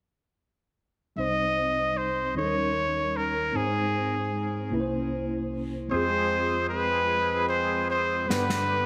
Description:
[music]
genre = slow gospel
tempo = 51 BPM (dotted quarters)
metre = 6/8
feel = straight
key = C harmonic minor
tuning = A4 = 438 Hz
[part]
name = clear trumpet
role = melody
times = 1.2-8.9 s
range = Ab4 to Eb5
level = -29 LUFS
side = equal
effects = digital delay
[part]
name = mellow tine electric piano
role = accompaniment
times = 1.2-8.9 s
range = C2 to C5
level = -32 LUFS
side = equal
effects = ensemble chorus
[part]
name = bright tonewheel organ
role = sustained chords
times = 5.9-8.9 s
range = D3 to Ab4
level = -34 LUFS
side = equal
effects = fast rotary speaker, overdrive, chorus vibrato
[part]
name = snare drum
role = drums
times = 8.3-8.7 s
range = none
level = -32 LUFS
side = equal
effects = gated reverb
[sound]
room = moderate plate reverb, RT60 2.0 s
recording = bright 1980s-style digital production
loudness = -27 LUFS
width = mono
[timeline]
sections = 1.2-8.9 A section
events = drum fill 8.3-8.9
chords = 1.2 Cm; 2.4 Eb7; 3.5 Ab; 4.7 C7b9; 5.9 Fm; 8.3 G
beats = | 1.17 2.35 | 3.54 4.73 | 5.92 7.10 | 8.29

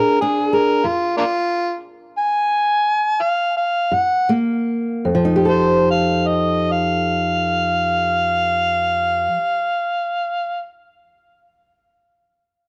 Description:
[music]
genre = acoustic country blues, solo or duo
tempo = 50-64 BPM (dotted quarters)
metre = 12/8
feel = straight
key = F mixolydian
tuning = A4 = 438 Hz
[part]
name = overdriven harmonica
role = melody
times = 0.0-10.7 s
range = Bb3 to Ab5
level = -20 LUFS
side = equal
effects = slapback echo
[part]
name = fingerpicked old ladder-braced acoustic guitar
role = accompaniment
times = 0.0-9.7 s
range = F2 to A4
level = -21 LUFS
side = equal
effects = none
[sound]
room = studio reverb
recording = dry, close 1970s-style studio recording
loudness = -19 LUFS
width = mono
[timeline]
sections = 0.0-5.1 A section; 5.1-9.9 B section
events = slowing down 0.0-5.1; harmonica solo 0.0-5.1; stop 0.9-3.9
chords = 0.0 Bb7; 0.9 N.C.; 3.9 Gb; 5.1 F9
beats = | 0.85 1.83 2.85 3.92 | 5.08 6.29 7.49 8.70

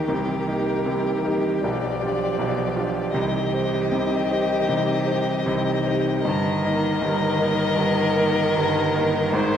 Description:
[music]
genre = classical, slow romantic movement for piano quartet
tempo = 78 BPM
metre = 4/4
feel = rubato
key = unclear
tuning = A4 = 441 Hz
[part]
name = rich violin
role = melody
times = 0.0-9.6 s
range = Bb4 to Eb5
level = -27 LUFS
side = left 5 dB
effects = none
[part]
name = rich cello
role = second line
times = 0.0-9.6 s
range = Eb3 to F3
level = -29 LUFS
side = right 2 dB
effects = none
[part]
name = rich violin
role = second line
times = 0.0-9.6 s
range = G4 to Bb4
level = -28 LUFS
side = equal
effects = none
[part]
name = clear baby grand piano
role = accompaniment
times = 0.0-9.6 s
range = G1 to Bb4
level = -23 LUFS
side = right 1 dB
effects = none
[sound]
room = wet recital hall reverb, RT60 1.6 s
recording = heard from further back in the room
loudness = -20 LUFS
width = side -8 dB against mid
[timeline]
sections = 0.0-9.6 A section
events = none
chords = 0.1 Cm7; 1.6 G7/B; 3.1 Cm; 6.2 Eb/G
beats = | 0.07 0.85 1.63 2.37 | 3.13 3.92 4.68 5.45 | 6.24 7.01 7.77 8.55 | 9.32

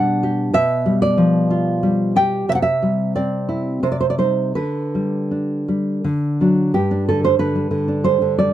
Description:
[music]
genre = romantic piece for solo classical guitar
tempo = 79-96 BPM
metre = 3/4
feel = rubato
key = G major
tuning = A4 = 440 Hz
[part]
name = nylon-string guitar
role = solo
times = 0.0-8.5 s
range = G2 to G5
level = -16 LUFS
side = equal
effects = none
[sound]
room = light reverb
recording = dry, close 1970s-style studio recording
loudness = -16 LUFS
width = side -12 dB against mid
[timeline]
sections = 0.0-6.7 A section; 6.7-8.5 B section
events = none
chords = 0.0 G/B; 0.5 G7/B; 2.5 C; 3.8 Cm; 4.5 G/D; 6.0 D; 6.7 G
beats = | 0.54 1.19 1.82 | 2.48 3.14 3.82 | 4.55 5.30 6.04 | 6.74 7.40 8.05

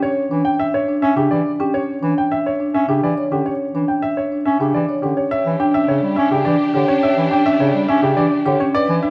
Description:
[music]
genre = classical, minimalist pattern music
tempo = 105 BPM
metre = 3/4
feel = straight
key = unclear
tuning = A4 = 440 Hz
[part]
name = clear grand piano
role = melody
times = 0.0-9.1 s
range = G4 to G5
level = -23 LUFS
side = equal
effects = none
[part]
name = marimba with medium mallets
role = arpeggios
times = 0.0-9.1 s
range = C#4 to C#5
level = -21 LUFS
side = equal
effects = none
[part]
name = warm bass clarinet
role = accompaniment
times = 0.3-9.0 s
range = C#3 to C#4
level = -24 LUFS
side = equal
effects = none
[part]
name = rich chamber string section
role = sustained chords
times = 5.3-9.1 s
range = D4 to G4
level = -27 LUFS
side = equal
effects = none
[sound]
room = moderate large studio reverb, RT60 1.3 s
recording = worn, warbling old tape, cassette tape, warbly pitch drift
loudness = -18 LUFS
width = mono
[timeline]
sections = 0.0-5.3 A section; 5.3-9.1 B section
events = none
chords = 0.0 C#dim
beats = | 0.18 0.75 1.32 | 1.89 2.46 3.03 | 3.60 4.18 4.75 | 5.32 5.89 6.46 | 7.03 7.61 8.18 | 8.75

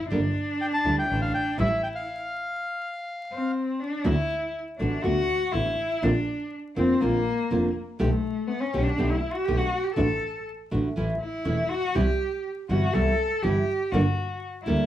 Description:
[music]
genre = tango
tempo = 122 BPM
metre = 4/4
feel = rubato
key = D major from 4.0 s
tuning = A4 = 439 Hz
[part]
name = warm cello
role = second line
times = 0.0-14.9 s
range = A3 to A4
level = -27 LUFS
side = left 1 dB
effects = none
[part]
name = clear double bass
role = bass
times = 0.0-14.9 s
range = E1 to D2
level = -28 LUFS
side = equal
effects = none
[part]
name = nylon-string guitar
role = accompaniment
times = 0.1-14.8 s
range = B2 to A4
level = -26 LUFS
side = right 1 dB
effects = none
[part]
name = bandoneon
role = melody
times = 0.6-3.5 s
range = E5 to A5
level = -28 LUFS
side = left 1 dB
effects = none
[sound]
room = moderate studio reverb, RT60 0.5 s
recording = heard from further back in the room, vinyl crackle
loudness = -24 LUFS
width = side -12 dB against mid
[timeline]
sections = 0.0-4.0 A section; 4.0-14.9 B section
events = stop 2.1-4.0; cello solo 4.0-14.9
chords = 0.1 Gsus2; 1.1 A7sus4; 1.6 A7; 2.1 N.C.; 4.0 D6; 6.0 Bbadd9; 8.0 Gadd9/B; 10.0 D/A; 11.0 A; 12.0 Cmaj7; 13.9 Gmadd9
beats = | 0.10 0.59 1.08 1.58 | 2.07 2.56 3.06 3.55 | 4.05 4.54 5.04 5.53 | 6.03 6.52 7.01 7.51 | 8.00 8.49 8.99 9.48 | 9.97 10.47 10.96 11.46 | 11.95 12.45 12.94 13.43 | 13.93 14.42

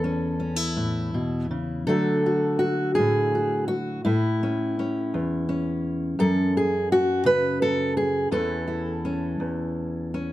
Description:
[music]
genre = folk, solo fingerstyle acoustic guitar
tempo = 56 BPM (dotted quarters)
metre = 6/8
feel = rubato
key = A major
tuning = A4 = 441 Hz
[part]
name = fingerpicked steel-string acoustic guitar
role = solo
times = 0.0-10.3 s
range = E2 to B4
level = -22 LUFS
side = equal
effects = none
[sound]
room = light reverb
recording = close, detailed microphones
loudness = -22 LUFS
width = side -15 dB against mid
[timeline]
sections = 0.0-1.9 A section; 1.9-10.3 A section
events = none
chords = 0.0 A/E; 1.9 D; 4.0 A; 6.2 F#5; 8.3 A/E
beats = 0.76 | 1.87 2.96 | 4.04 5.12 | 6.19 7.25 | 8.32 9.40

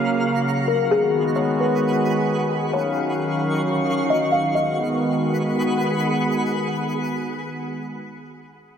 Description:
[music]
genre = hip hop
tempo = free time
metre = none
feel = none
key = G# dorian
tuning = A4 = 440 Hz
[part]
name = warm analog pad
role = sustained chords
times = 0.0-8.0 s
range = C#3 to E#5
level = -22 LUFS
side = equal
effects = chorus, low-pass filter
[part]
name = twinkling granular texture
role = texture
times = 0.0-8.0 s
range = D#3 to C#6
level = -28 LUFS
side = right 1 dB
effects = built-in reverb
[part]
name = kalimba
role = melody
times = 0.7-5.9 s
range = G#4 to E#5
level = -23 LUFS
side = left 3 dB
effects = low-pass filter, digital delay
[sound]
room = moderate lush hall reverb, RT60 2.2 s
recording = none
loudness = -19 LUFS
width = side -8 dB against mid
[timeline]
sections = 0.0-4.5 A section; 4.5-8.2 B section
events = filter sweep 0.0-4.5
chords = 0.0 F#maj7; 0.9 G#m7; 2.7 D#m9; 4.5 G#m7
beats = free time

